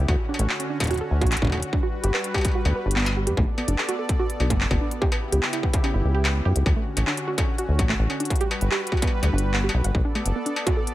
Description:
IDM; 146 BPM; 4/4; straight; A4 = 440 Hz
warm analog pad; sustained chords; 0.0-10.9 s; C#3 to D5; -31 LUFS; left 1 dB; chorus
deep acid bass; bass; 0.0-10.3 s; F#1 to G2; -22 LUFS; equal
warbly dusty pluck; arpeggios; 0.1-10.9 s; A3 to F#5; -29 LUFS; right 2 dB; chorus, ping-pong delay
electronic kick drum; drums; 0.1-10.7 s; -24 LUFS; equal; distortion
industrial drum kit; drums; 0.1-10.9 s; handclaps, hi-hat, struck metal; -28 LUFS; left 1 dB
digital ambience; -21 LUFS; side -15 dB against mid
0.0-10.9 A section
0.1 Dmaj7; 1.7 Gmaj7; 3.4 Bm7; 5.0 C#m7b5; 6.7 Dmaj7; 8.3 Gmaj7; 9.9 Bm7

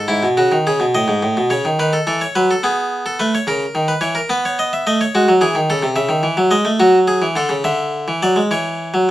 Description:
classical, baroque-style two-part invention for harpsichord; 71 BPM (dotted quarters); 6/8; straight; A4 = 441 Hz
harpsichord; solo; 0.0-9.1 s; G#2 to E5; -14 LUFS; equal
light reverb; -14 LUFS; side -14 dB against mid
0.1-9.1 A section
0.1 E/G#; 0.9 A; 1.8 D#dim; 2.6 G#m/B; 3.5 C#m13; 4.3 B; 5.1 G#7; 6.0 C#m; 6.8 F#m; 7.6 D; 8.5 N.C.

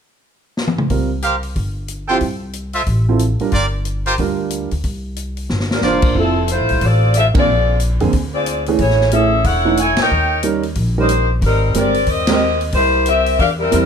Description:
jazz, big band swing; 182 BPM; 4/4; swing 62% on 8ths; F major; A4 = 439 Hz
swinging big-band drum kit; drums; 0.6-13.8 s; crash cymbal, hi-hat, kick drum, ride cymbal, snare drum, toms; -22 LUFS; left 1 dB
warm concert grand piano; accompaniment; 0.9-13.9 s; D3 to C5; -19 LUFS; right 6 dB
upright bass; bass; 0.9-13.9 s; E1 to F2; -19 LUFS; equal
brilliant trumpet section; stabs; 1.2-6.2 s; F4 to G5; -20 LUFS; right 1 dB
mellow saxophone section; melody; 5.7-13.9 s; F3 to G#5; -16 LUFS; left 2 dB
light reverb; dark, warm production; -14 LUFS; side -7 dB against mid
0.9-6.2 A section; 6.2-13.9 B section
drum fill 0.6-0.9, 5.5-5.8; band accent 7.3, 9.9, 12.2
0.0 N.C.; 0.9 C7sus4; 2.2 Fmaj7/C; 3.5 Gm7; 4.8 C9sus4; 6.2 Fmaj7; 7.5 Bb9; 8.8 Amaj7; 10.1 Eb7; 11.4 Abmaj9; 12.7 C7

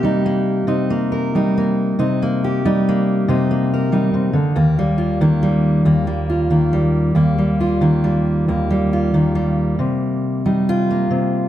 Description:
folk, solo fingerstyle acoustic guitar; 46 BPM (dotted quarters); 6/8; straight; A4 = 437 Hz
fingerpicked steel-string acoustic guitar; solo; 0.0-11.5 s; Eb2 to Bb4; -15 LUFS; equal
moderate recital hall reverb, RT60 1.8 s; -15 LUFS; side -12 dB against mid
0.0-9.8 A section; 9.8-11.5 B section
0.0 Cm7; 4.6 Ebadd9; 9.8 Cm7

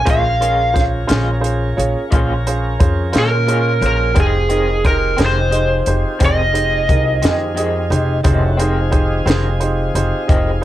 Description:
slow blues; 59 BPM (dotted quarters); 12/8; straight; F minor; A4 = 440 Hz
lead guitar through a small cranked amp; melody; 0.0-10.6 s; Ab4 to F5; -18 LUFS; right 1 dB; overdrive, cassette tape
tonewheel organ; sustained chords; 0.0-10.6 s; C4 to Bb4; -26 LUFS; equal; slow rotary speaker
upright bass; bass; 0.0-10.6 s; F1 to Bb2; -18 LUFS; equal
electric guitar through a small old amp; accompaniment; 0.1-10.5 s; F2 to F4; -24 LUFS; left 2 dB; tremolo
warm upright piano; accompaniment; 0.1-10.6 s; Db4 to Eb5; -22 LUFS; right 3 dB
compact cocktail drum kit; drums; 0.1-10.5 s; hi-hat, kick drum, snare drum; -18 LUFS; equal; cassette tape
little or no reverb; home recording on cassette; -13 LUFS; side -13 dB against mid
0.0-10.6 A section
0.0 Bbm7; 4.2 Fm7

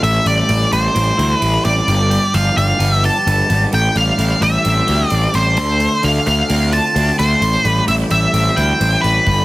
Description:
quiet-loud alternative rock; 130 BPM; 4/4; straight; A minor; A4 = 440 Hz
octave-fuzz lead guitar; melody; 0.0-9.4 s; B4 to A5; -16 LUFS; equal; distortion
twelve-string electric guitar; arpeggios; 0.0-9.4 s; G2 to G4; -21 LUFS; left 1 dB
fuzz picked electric bass; bass; 0.0-9.4 s; G1 to D2; -16 LUFS; equal; overdrive
huge arena drum kit; drums; 0.0-9.4 s; hi-hat, kick drum; -29 LUFS; right 2 dB
light reverb, small room ambience; heavily compressed radio sound, multiband compression; -12 LUFS; side -19 dB against mid
0.0-9.4 A section
0.0 Am7; 1.9 G7; 3.7 Am7; 5.6 Dm7; 7.4 Am7

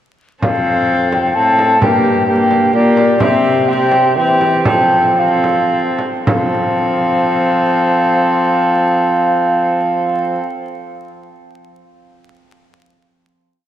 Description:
classical, renaissance-style consort dance; 107-130 BPM; 3/4; straight; F major; A4 = 440 Hz
mellow baroque flute; melody; 0.4-10.4 s; D5 to A5; -15 LUFS; equal
dark violin; second line; 0.4-10.4 s; G4 to A4; -20 LUFS; right 2 dB
rich viola; accompaniment; 0.4-10.4 s; Bb3 to C4; -17 LUFS; left 1 dB
bright trombone; bass; 0.4-10.4 s; F2 to F3; -20 LUFS; right 1 dB
frame drum; percussion; 0.4-6.5 s; -22 LUFS; right 1 dB
wet church reverb, RT60 3.7 s; vinyl crackle; -11 LUFS; side -11 dB against mid
0.4-6.3 A section; 6.3-9.6 final chord
slowing down 2.5-6.3
0.4 F; 1.8 Gm; 3.2 C; 4.7 F

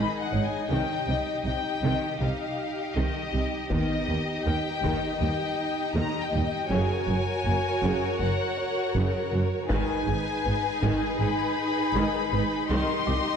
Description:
cinematic, hybrid orchestral and electronic film score; 80 BPM; 4/4; straight; G# minor; A4 = 441 Hz
rich studio violin section; melody; 0.0-13.4 s; Eb5 to C6; -32 LUFS; left 6 dB
rich symphonic violin section; second line; 0.0-13.4 s; G4 to D#5; -31 LUFS; left 4 dB
rich symphonic viola section; accompaniment; 0.0-13.4 s; C3 to A#4; -31 LUFS; right 2 dB
rich chamber double bass section; bass; 0.0-13.2 s; F#1 to D#2; -31 LUFS; right 2 dB
warm symphonic cello section; bass; 0.0-13.2 s; C2 to C3; -32 LUFS; right 2 dB
dark baby grand piano; texture; 0.0-13.4 s; B3 to D6; -40 LUFS; left 2 dB
taiko ensemble; drums; 3.7-5.2, 9.7-11.2 s; -34 LUFS; left 1 dB
moderate scoring stage reverb, RT60 1.7 s; dark, warm production; -24 LUFS; side -7 dB against mid
0.0-13.4 A section
0.0 G#m; 0.7 Cm; 3.7 D#; 6.7 F#; 9.7 G#m; 12.7 Cm

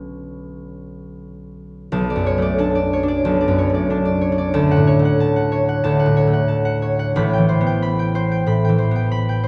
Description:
classical, solo harp piece; 92 BPM; 4/4; rubato; B minor; A4 = 440 Hz
concert harp; solo; 0.0-9.5 s; A1 to C#6; -19 LUFS; equal
wet recital hall reverb, RT60 1.8 s; recorded in a church or concert hall, nothing above 10.5 kHz; -18 LUFS; mono
0.0-1.9 A section; 1.9-9.5 B section
0.0 Bm9; 4.5 Dmaj7; 7.2 Am9

